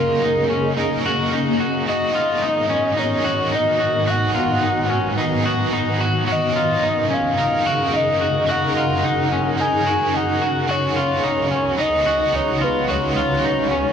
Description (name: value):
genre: dream pop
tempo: 109 BPM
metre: 4/4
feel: straight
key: F# major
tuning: A4 = 440 Hz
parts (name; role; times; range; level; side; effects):
- soft octave-layered synth lead; melody; 0.0-13.9 s; A#4 to G#5; -21 LUFS; left 1 dB; chorus, digital delay
- biting overdriven guitar; accompaniment; 0.0-13.9 s; G#2 to A#4; -26 LUFS; right 5 dB; tremolo, analog chorus
- granular cloud pad; sustained chords; 0.0-13.9 s; C#2 to D#5; -22 LUFS; equal; built-in reverb
- electric guitar at the edge of break-up; arpeggios; 0.0-13.9 s; C#4 to F#4; -23 LUFS; left 2 dB; wide subtle chorus, digital delay
room: moderate huge ambient reverb, RT60 5.0 s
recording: none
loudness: -17 LUFS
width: side -8 dB against mid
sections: 0.0-13.9 A section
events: none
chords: 0.0 F#6; 1.9 G#m7; 6.3 F#6; 10.7 C#7sus4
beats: 0.23 0.78 1.33 | 1.88 2.43 2.98 3.53 | 4.08 4.63 5.18 5.73 | 6.28 6.83 7.38 7.93 | 8.48 9.03 9.58 10.13 | 10.69 11.24 11.79 12.34 | 12.89 13.44